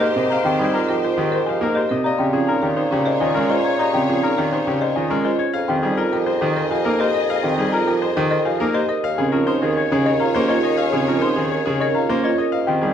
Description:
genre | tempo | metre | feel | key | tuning
classical, minimalist pattern music | 103 BPM | 3/4 | straight | unclear | A4 = 437 Hz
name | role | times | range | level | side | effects
bright concert grand piano | melody | 0.0-12.9 s | G4 to F5 | -24 LUFS | left 6 dB | none
bright grand piano | accompaniment | 0.0-12.9 s | C3 to Bb3 | -24 LUFS | right 2 dB | none
warm studio string section | sustained chords | 0.0-12.9 s | G4 to Eb5 | -28 LUFS | left 3 dB | none
celesta | arpeggios | 0.0-12.9 s | Eb5 to C6 | -26 LUFS | left 4 dB | none
marimba with medium hard mallets | arpeggios | 0.0-12.9 s | C4 to Bb4 | -23 LUFS | right 5 dB | none
mellow bassoon | bass | 0.0-12.9 s | Eb2 to Bb2 | -24 LUFS | equal | none
room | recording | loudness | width
moderate recital hall reverb, RT60 1.6 s | none | -17 LUFS | side -9 dB against mid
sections
0.0-12.9 A section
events
none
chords
0.0 Abmaj13; 2.0 Bbm11; 5.5 Fm9; 9.0 Eb9sus4

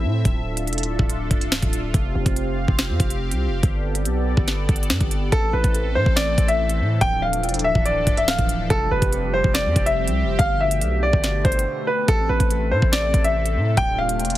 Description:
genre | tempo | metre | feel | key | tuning
hip hop, drill | 142 BPM | 4/4 | half-time | A minor | A4 = 440 Hz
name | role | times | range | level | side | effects
sweeping resonant pad | sustained chords | 0.0-14.4 s | B2 to F5 | -28 LUFS | equal | chorus
hard-hitting 808-style bass | bass | 0.0-14.4 s | C1 to A2 | -23 LUFS | equal | none
drill drum kit | drums | 0.3-14.4 s | hi-hat, kick drum, snare drum | -21 LUFS | equal | none
clear concert grand piano | melody | 5.3-14.4 s | A4 to G5 | -22 LUFS | left 1 dB | tape echo
room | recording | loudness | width
little or no reverb | heavily compressed radio sound | -18 LUFS | side -14 dB against mid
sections
0.0-5.3 A section; 5.3-14.4 B section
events
drums muted 11.7-12.1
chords
0.3 Dmadd9; 1.9 Fsus2; 3.6 Gadd9; 5.3 Am; 7.0 Dmadd9; 8.7 Fsus2; 10.4 Gadd9; 12.1 Am; 13.8 Dmadd9

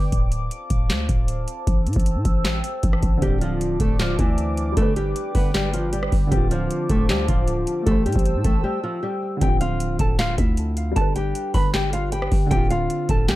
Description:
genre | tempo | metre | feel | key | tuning
hip hop, trap | 155 BPM | 4/4 | half-time | D dorian | A4 = 440 Hz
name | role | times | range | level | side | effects
dark analog pad | sustained chords | 0.0-9.4 s | B4 to E6 | -31 LUFS | equal | chorus, phaser
growling 808-style bass | bass | 0.0-13.4 s | D1 to A2 | -24 LUFS | equal | none
booming analog drum machine | drums | 0.1-13.4 s | handclaps, hi-hat, kick drum, rim click, snare drum | -22 LUFS | equal | none
nylon-string guitar | melody | 3.2-13.4 s | E3 to B5 | -25 LUFS | left 1 dB | digital delay
dark grand piano | accompaniment | 3.2-13.4 s | D3 to C5 | -29 LUFS | right 2 dB | none
room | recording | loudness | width
digital ambience | none | -19 LUFS | side -16 dB against mid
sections
0.0-9.4 A section; 9.4-13.4 B section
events
break 0.0-3.2, 8.6-9.4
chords
0.1 Dm7; 1.7 Am7; 3.2 Dm7; 4.8 G; 6.3 Dm7; 7.9 Am7; 9.4 Dm7; 11.0 G; 12.5 Dm7

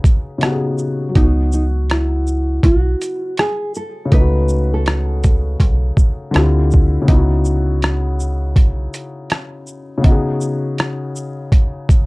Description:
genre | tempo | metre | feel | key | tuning
lo-fi hip hop | 81 BPM | 4/4 | swing 62% on 16ths | unclear | A4 = 440 Hz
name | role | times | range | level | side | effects
nylon-string guitar | melody | 0.0-6.7 s | D#4 to B4 | -22 LUFS | equal | low-pass filter
felt-muted upright piano | accompaniment | 0.0-12.1 s | C#3 to G#4 | -21 LUFS | left 2 dB | cassette tape, low-pass filter
boom bap sampler-style drum kit | drums | 0.0-12.1 s | hi-hat, kick drum, rim click, shaker | -13 LUFS | equal | none
metallic FM bass | bass | 1.2-8.9 s | B1 to D2 | -17 LUFS | equal | none
room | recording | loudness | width
little or no reverb | dark, warm production | -14 LUFS | side -24 dB against mid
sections
0.0-12.1 A section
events
none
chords
0.0 B69; 1.2 Bsus2; 4.1 B7/C#; 6.3 Dm11; 7.1 C#m11; 10.0 C#9sus4

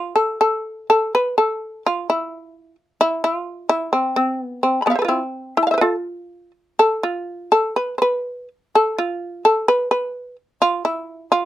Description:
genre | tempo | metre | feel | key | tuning
japanese traditional, Japanese chamber music | 64 BPM | 2/4 | rubato | E miyako bushi | A4 = 440 Hz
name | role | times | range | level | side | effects
shamisen | solo | 0.0-11.5 s | B3 to B5 | -17 LUFS | equal | none
room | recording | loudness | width
little or no reverb | close, detailed microphones | -18 LUFS | side -13 dB against mid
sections
0.0-11.5 A section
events
none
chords
none

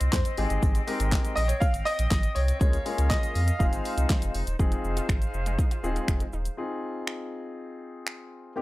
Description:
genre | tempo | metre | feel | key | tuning
dance-pop | 121 BPM | 4/4 | straight | F minor | A4 = 440 Hz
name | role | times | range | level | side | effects
clear concert grand piano | melody | 0.0-4.3 s | C5 to F5 | -31 LUFS | equal | analog delay
bright flute section | sustained chords | 0.0-6.6 s | C4 to G5 | -37 LUFS | equal | sidechain pumping
warm sub bass | bass | 0.0-6.5 s | Eb1 to F2 | -27 LUFS | equal | sidechain pumping
pop drum kit | drums | 0.0-8.2 s | finger snaps, handclaps, hi-hat, kick drum, shaker, snare drum | -26 LUFS | equal | none
tube shaker | percussion | 0.0-4.6 s | none | -52 LUFS | right 3 dB | none
warm concert grand piano | accompaniment | 0.4-8.6 s | Ab3 to Bb4 | -33 LUFS | left 3 dB | sidechain pumping
wide unison pluck | arpeggios | 4.6-6.4 s | F3 to F4 | -42 LUFS | right 2 dB | sidechain pumping, analog delay
room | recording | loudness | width
small room ambience | dry, gritty hardware recording | -24 LUFS | side -18 dB against mid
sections
0.0-4.6 A section; 4.6-6.6 B section; 6.6-8.6 C section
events
none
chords
0.4 Abmaj7; 2.6 Db6; 3.6 Fm7

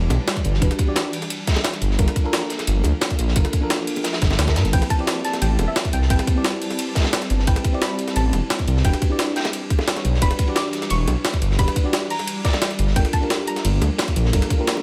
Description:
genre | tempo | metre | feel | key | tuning
liquid drum and bass | 175 BPM | 4/4 | straight | A minor | A4 = 439 Hz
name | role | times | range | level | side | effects
mellow FM electric piano | accompaniment | 0.0-14.8 s | C4 to D5 | -30 LUFS | equal | chorus, phaser, vintage 12-bit sampler grit, delay
shimmering ambient pad | sustained chords | 0.0-14.8 s | E3 to A5 | -35 LUFS | equal | chorus, built-in reverb, sidechain pumping
dark detuned saw bass | bass | 0.0-14.4 s | E1 to G2 | -22 LUFS | equal | none
crunchy breakbeat drum kit | drums | 0.1-14.8 s | hi-hat, ride cymbal, snare drum | -31 LUFS | equal | high-pass filter on cymbals, studio reverb, high-pass filter on hats, high-pass filter on snare, high-pass filter on room
jungle sampler-style drum kit | drums | 0.1-14.7 s | crash cymbal, hi-hat, ride cymbal, snare drum | -28 LUFS | equal | overdrive, studio reverb
bongos | percussion | 0.1-14.8 s | none | -32 LUFS | equal | none
electronic kick drum | drums | 0.4-14.6 s | none | -22 LUFS | equal | overdrive, studio reverb
soft round pluck | melody | 4.7-14.8 s | D5 to D6 | -32 LUFS | equal | lush chorus, tape echo
room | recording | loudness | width
studio ambience | none | -21 LUFS | mono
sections
0.0-14.8 A section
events
none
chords
0.0 Em7; 1.1 Gm7; 4.7 Am7; 8.8 Em7; 12.1 Gm7

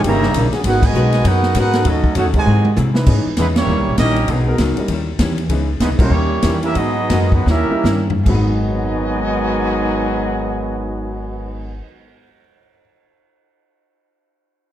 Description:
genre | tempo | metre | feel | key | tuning
jazz, big band swing | 139-198 BPM | 4/4 | swing 61% on 8ths | G# minor | A4 = 440 Hz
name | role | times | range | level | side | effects
archtop guitar, miked and amplified | accompaniment | 0.0-11.9 s | G#2 to B4 | -25 LUFS | left 4 dB | none
clear trombone section | sustained chords | 0.0-3.3 s | E3 to B4 | -26 LUFS | left 2 dB | none
upright bass | bass | 0.0-11.8 s | G1 to B#2 | -19 LUFS | equal | none
swinging big-band drum kit | drums | 0.0-11.6 s | crash cymbal, cymbal swell, hi-hat, kick drum, ride cymbal, snare drum, toms | -20 LUFS | equal | none
warm trumpet section | melody | 0.1-11.8 s | F#3 to A#5 | -22 LUFS | equal | none
clear trombone section | second line | 0.1-11.8 s | G#2 to F#4 | -21 LUFS | right 3 dB | none
warm grand piano | accompaniment | 3.1-12.8 s | G#2 to C#7 | -26 LUFS | left 1 dB | none
room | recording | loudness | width
moderate recital hall reverb, RT60 1.4 s | dark, warm production | -14 LUFS | side -12 dB against mid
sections
0.0-3.1 A section; 3.1-8.3 B section; 8.3-11.7 C section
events
band accent 0.8, 3.5, 6.0; drum fill 2.5-3.1, 7.5-8.3; slowing down 5.5-8.3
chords
0.0 D#7b9; 0.6 G#m11; 1.9 D#m7b5; 2.5 G#7b13; 3.1 C#m9; 3.7 D#7b9; 4.3 G#m7; 4.9 D#7b9; 5.5 C#m9; 6.1 D#7b9; 6.8 G#m7; 7.5 D#7b9; 8.3 G#m7

